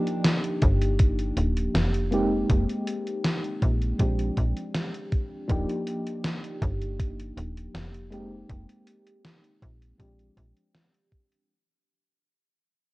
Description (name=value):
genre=vaporwave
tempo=80 BPM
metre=4/4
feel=straight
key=Eb major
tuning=A4 = 440 Hz
part: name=mellow FM electric piano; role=accompaniment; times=0.0-11.5 s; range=F3 to G4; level=-30 LUFS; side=equal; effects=tremolo, wide subtle chorus, cassette tape, tape echo
part: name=gated 80s digital drum machine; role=drums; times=0.1-11.5 s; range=hi-hat, snare drum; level=-28 LUFS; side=equal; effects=gated reverb, gated reverb snare, vintage 12-bit sampler grit
part: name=slap-like FM bass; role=bass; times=0.6-10.5 s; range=Eb1 to Bb1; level=-27 LUFS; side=equal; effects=none
part: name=electronic kick drum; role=drums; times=0.6-11.3 s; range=none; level=-24 LUFS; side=equal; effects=vintage 12-bit sampler grit
room=light reverb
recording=worn, warbling old tape, cassette tape, warbly pitch drift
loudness=-24 LUFS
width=side -20 dB against mid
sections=0.0-11.5 A section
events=fade-out 0.0-11.5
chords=0.0 Ebmaj7; 2.1 Fm11; 4.0 Bb13; 5.5 Ebmaj7; 8.1 Fm11; 10.0 Bb13